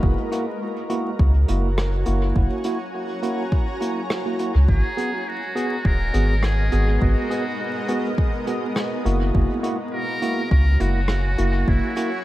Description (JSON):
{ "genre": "ambient dub", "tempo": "103 BPM", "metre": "4/4", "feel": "swing 53% on 16ths", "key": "unclear", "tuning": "A4 = 440 Hz", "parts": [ { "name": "granular cloud pad", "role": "sustained chords", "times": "0.0-12.2 s", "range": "G#3 to A#5", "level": "-29 LUFS", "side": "equal", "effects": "built-in reverb" }, { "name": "tine electric piano", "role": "stabs", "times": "0.0-12.1 s", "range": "A#3 to G#4", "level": "-26 LUFS", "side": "right 1 dB", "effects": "fast stereo tremolo, low-pass filter, dub echo" }, { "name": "soft dub sub bass", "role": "bass", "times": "0.0-11.8 s", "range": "D#1 to C#2", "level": "-19 LUFS", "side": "equal", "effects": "none" }, { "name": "electronic kick drum", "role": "drums", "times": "0.0-11.8 s", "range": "none", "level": "-21 LUFS", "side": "equal", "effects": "none" }, { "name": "vintage brush drum kit", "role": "drums", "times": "0.3-12.1 s", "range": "hi-hat, rim click", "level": "-31 LUFS", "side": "equal", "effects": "dub echo" }, { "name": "trumpet with metal mute", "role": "melody", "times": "4.7-12.2 s", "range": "E4 to A#4", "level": "-29 LUFS", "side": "equal", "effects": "dub echo" } ], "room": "light reverb, studio reverb", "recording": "vinyl crackle", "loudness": "-19 LUFS", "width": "side -15 dB against mid", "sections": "0.0-12.2 A section", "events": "none", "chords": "0.0 F#7; 4.7 G#m7; 9.3 F#7" }